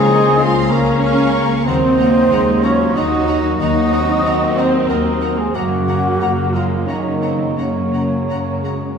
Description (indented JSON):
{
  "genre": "cinematic, emotional film score for orchestra",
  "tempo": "92 BPM",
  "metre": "3/4",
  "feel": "uneven beats, rubato",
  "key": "Eb dorian",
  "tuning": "A4 = 440 Hz",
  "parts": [
    { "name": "bright wooden-headed alto flute", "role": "melody", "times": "0.0-9.0 s", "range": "Db4 to Eb5", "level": "-20 LUFS", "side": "right 2 dB", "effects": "none" },
    { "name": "warm studio violin section", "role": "melody", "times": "0.0-8.7 s", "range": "Bb5 to Db6", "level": "-35 LUFS", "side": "left 2 dB", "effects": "none" },
    { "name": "dark symphonic violin section", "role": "second line", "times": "0.0-8.7 s", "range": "Eb5 to C6", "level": "-29 LUFS", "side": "left 2 dB", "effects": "none" },
    { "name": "mellow cor anglais", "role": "second line", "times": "0.0-9.0 s", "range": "Gb3 to Gb4", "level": "-24 LUFS", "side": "right 2 dB", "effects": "none" },
    { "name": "mellow hollow small flute group", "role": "second line", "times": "0.0-9.0 s", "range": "Db5 to Eb6", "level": "-25 LUFS", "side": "left 3 dB", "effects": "none" },
    { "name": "warm symphonic viola section", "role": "accompaniment", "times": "0.0-9.0 s", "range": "Gb3 to F4", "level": "-22 LUFS", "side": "equal", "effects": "none" },
    { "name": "mellow French horn section", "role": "sustained chords", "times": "0.0-9.0 s", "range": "Db3 to Bb3", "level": "-23 LUFS", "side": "left 3 dB", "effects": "none" },
    { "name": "concert harp", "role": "arpeggios", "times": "0.0-9.0 s", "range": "Gb2 to Bb4", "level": "-24 LUFS", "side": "left 6 dB", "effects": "none" },
    { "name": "rich studio cello section", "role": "bass", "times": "0.0-9.0 s", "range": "Db3 to Eb4", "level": "-22 LUFS", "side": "right 1 dB", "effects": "none" },
    { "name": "rich studio double bass section", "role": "bass", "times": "0.0-8.9 s", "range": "Db2 to Gb2", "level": "-22 LUFS", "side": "right 2 dB", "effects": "none" }
  ],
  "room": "wet scoring stage reverb, RT60 1.9 s",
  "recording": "heard from further back in the room",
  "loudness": "-13 LUFS",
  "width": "side -6 dB against mid",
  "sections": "0.0-9.0 A section",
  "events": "none",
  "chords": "0.0 Bbm/Db; 1.7 Ebm; 5.5 Gb"
}